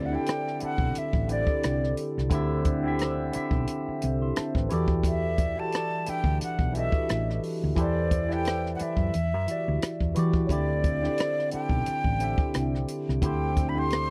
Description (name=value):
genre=R&B, neo-soul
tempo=88 BPM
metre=4/4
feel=swing 56% on 16ths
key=unclear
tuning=A4 = 443 Hz
part: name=breathy concert flute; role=melody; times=0.0-14.1 s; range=C#5 to C6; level=-34 LUFS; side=equal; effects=tape echo
part: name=barky tine electric piano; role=accompaniment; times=0.0-14.1 s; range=D3 to C6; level=-32 LUFS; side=equal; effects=phaser
part: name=hollow-body short-scale fingered electric bass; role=bass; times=0.0-14.1 s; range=A1 to E3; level=-31 LUFS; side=equal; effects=none
part: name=compact cocktail drum kit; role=drums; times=0.3-14.1 s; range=hi-hat, kick drum, rim click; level=-31 LUFS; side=equal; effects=none
room=little or no reverb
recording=dry, close 1970s-style studio recording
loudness=-27 LUFS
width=mono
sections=0.0-10.5 A section; 10.5-14.1 A section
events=none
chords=0.0 D7sus4; 4.7 Em11; 7.8 Am9/E; 9.1 Em9; 10.5 D7sus4